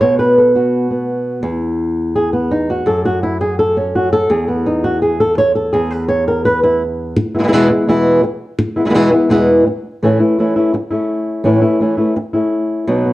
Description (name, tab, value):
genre	flamenco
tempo	168 BPM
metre	4/4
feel	straight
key	E major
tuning	A4 = 440 Hz
part	flamenco guitar	solo	0.0-13.1 s	E2 to C#5	-12 LUFS	equal	none
room	moderate large studio reverb, RT60 0.8 s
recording	worn, warbling old tape, cassette tape, warbly pitch drift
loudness	-12 LUFS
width	side -17 dB against mid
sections	0.0-7.2 A section; 7.2-12.9 B section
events	nylon-string guitar solo 0.0-7.2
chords	0.0 B5; 1.4 N.C.; 7.2 E; 10.0 A